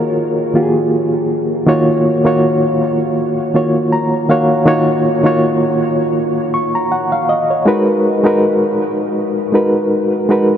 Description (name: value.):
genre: R&B.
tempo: 80 BPM.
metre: 4/4.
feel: swing 54% on 16ths.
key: Eb minor.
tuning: A4 = 439 Hz.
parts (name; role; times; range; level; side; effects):
bright reed electric piano; solo; 0.0-10.6 s; Eb3 to Db6; -12 LUFS; equal; fast tremolo, diffuse ambient delay.
room: wet huge ambient reverb, RT60 8.7 s.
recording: dreamy mix soaked in reverb.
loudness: -12 LUFS.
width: side -9 dB against mid.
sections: 0.0-10.6 A section.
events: reed electric piano fill 3.5-4.7.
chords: 0.0 Ebm9; 7.7 Abm9.